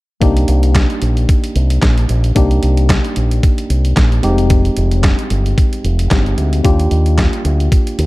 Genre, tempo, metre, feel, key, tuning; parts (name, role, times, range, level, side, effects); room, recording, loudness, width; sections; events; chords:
early-eighties boogie funk; 112 BPM; 4/4; swing 56% on 16ths; C minor; A4 = 436 Hz
tine electric piano; accompaniment; 0.2-8.1 s; Ab3 to G4; -19 LUFS; left 2 dB; auto-pan
fingered electric bass with an envelope filter; bass; 0.2-8.1 s; F1 to Eb2; -13 LUFS; equal
detuned 8-bit digital drum machine; drums; 0.2-8.1 s; handclaps, hi-hat, kick drum, snare drum; -15 LUFS; equal
digital ambience; -11 LUFS; side -20 dB against mid
0.2-8.1 A section
0.2 Cm9; 4.2 Fm9; 6.6 Ebmaj9